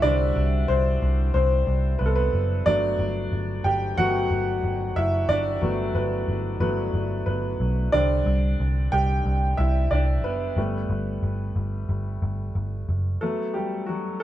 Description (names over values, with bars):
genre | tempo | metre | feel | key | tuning
piano-driven pop | 91 BPM | 4/4 | swing 56% on 16ths | G major | A4 = 440 Hz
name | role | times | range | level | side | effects
clear upright piano | accompaniment | 0.0-14.2 s | D3 to G5 | -25 LUFS | equal | none
vintage muted picked electric bass | bass | 0.0-13.2 s | F#1 to C2 | -24 LUFS | equal | none
room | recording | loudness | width
moderate stone room reverb, RT60 1.2 s | band playing live in one room | -22 LUFS | side -13 dB against mid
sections
0.0-13.2 A section; 13.2-14.2 B section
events
upright piano solo 0.0-13.2, 13.2-14.2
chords
0.0 Csus2; 2.7 Gmaj7; 7.9 Csus2; 10.6 Gadd9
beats
| 0.03 0.69 1.35 2.01 | 2.67 3.33 3.98 4.64 | 5.30 5.96 6.62 7.28 | 7.94 8.60 9.26 9.91 | 10.57 11.23 11.89 12.55 | 13.21 13.88